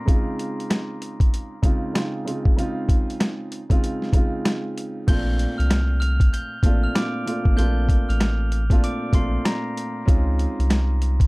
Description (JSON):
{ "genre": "hip hop, boom-bap hip-hop", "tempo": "96 BPM", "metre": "4/4", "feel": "swing 62% on 16ths", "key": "unclear", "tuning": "A4 = 440 Hz", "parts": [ { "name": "dark concert grand piano", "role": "accompaniment", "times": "0.0-11.3 s", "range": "Bb2 to F4", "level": "-27 LUFS", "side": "right 1 dB", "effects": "none" }, { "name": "boom bap sampler-style drum kit", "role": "drums", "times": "0.1-11.3 s", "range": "crash cymbal, hi-hat, kick drum, rim click, snare drum", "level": "-20 LUFS", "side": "equal", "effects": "none" }, { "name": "glockenspiel with soft plastic mallets", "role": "melody", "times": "5.1-9.7 s", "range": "Bb5 to G7", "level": "-33 LUFS", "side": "equal", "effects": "plate reverb" }, { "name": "soft dub sub bass", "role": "bass", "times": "5.1-11.3 s", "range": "A1 to Db2", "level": "-21 LUFS", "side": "equal", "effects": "none" } ], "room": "light reverb", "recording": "dark, warm production", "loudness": "-19 LUFS", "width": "side -25 dB against mid", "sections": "0.0-5.1 A section; 5.1-11.3 B section", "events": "none", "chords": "0.1 Dbmaj9; 5.1 Bbmaj9; 10.1 Dbmaj9" }